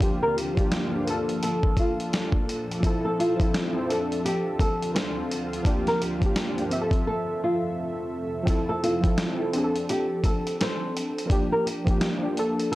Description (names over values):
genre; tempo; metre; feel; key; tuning
lo-fi hip hop; 85 BPM; 4/4; swing 59% on 16ths; F major; A4 = 438 Hz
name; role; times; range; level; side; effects
warm analog keys; accompaniment; 0.0-12.8 s; F3 to E5; -27 LUFS; equal; chorus, cassette tape, low-pass filter
granular cloud pad; sustained chords; 0.0-8.5 s; D2 to E5; -36 LUFS; equal; built-in reverb, low-pass filter
dusty soul sampler-style drum kit; drums; 0.0-12.8 s; hi-hat, kick drum, snare drum; -26 LUFS; equal; none
flamenco guitar; melody; 0.2-12.8 s; F4 to C5; -29 LUFS; equal; low-pass filter
room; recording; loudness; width
digital ambience; dry, gritty hardware recording, cassette tape; -23 LUFS; side -17 dB against mid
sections
0.0-8.5 A section; 8.5-12.8 B section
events
break 7.1-8.5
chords
0.0 Gm7; 1.1 Bbmaj7; 2.8 Fmaj7; 3.9 Dm7; 5.7 Gm7; 6.7 Fmaj7; 9.5 Dm7; 11.3 Gm7